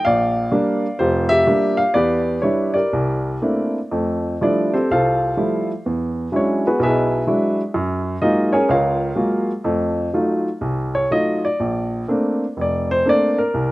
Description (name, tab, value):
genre	solo jazz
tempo	125 BPM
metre	4/4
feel	swing 67% on 8ths, rubato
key	unclear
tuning	A4 = 440 Hz
part	warm baby grand piano	solo	0.0-13.7 s	F1 to F5	-17 LUFS	equal	slapback echo
room	light reverb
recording	recorded outdoors, with no room sound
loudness	-17 LUFS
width	side -18 dB against mid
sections	0.0-3.9 A section; 3.9-13.7 B section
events	grand piano solo 3.9-13.7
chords	0.1 Bb6; 1.9 Em7; 2.9 C13; 3.9 Fmaj9; 5.9 E9; 7.7 Gbmaj9; 9.7 F7b9; 11.6 Bbmaj9